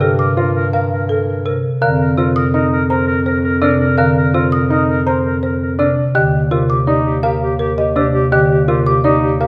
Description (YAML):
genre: classical, minimalist pattern music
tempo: 166 BPM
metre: 6/4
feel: straight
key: unclear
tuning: A4 = 438 Hz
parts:
  - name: folk marimba with medium hard mallets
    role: melody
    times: 0.0-9.5 s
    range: A4 to Bb5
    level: -25 LUFS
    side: equal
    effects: none
  - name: warm clarinet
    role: second line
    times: 0.0-9.5 s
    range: G4 to Bb4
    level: -24 LUFS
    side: equal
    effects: none
  - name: marimba with hard mallets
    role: accompaniment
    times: 0.0-8.9 s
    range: C3 to D3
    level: -20 LUFS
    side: equal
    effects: none
  - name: warm baby grand piano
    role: arpeggios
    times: 0.0-9.5 s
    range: D4 to C5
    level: -22 LUFS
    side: equal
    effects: none
  - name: mellow bass clarinet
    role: bass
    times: 0.0-9.5 s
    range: Eb2 to G2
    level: -21 LUFS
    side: equal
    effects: none
  - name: xylophone with soft rubber mallets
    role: arpeggios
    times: 0.2-9.1 s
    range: Eb5 to Eb6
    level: -25 LUFS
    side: equal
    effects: none
room: wet large studio reverb, RT60 1.4 s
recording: none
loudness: -15 LUFS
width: mono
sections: 0.0-9.5 A section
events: none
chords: 0.0 Gm9; 1.8 F7sus4; 6.2 Ebmaj9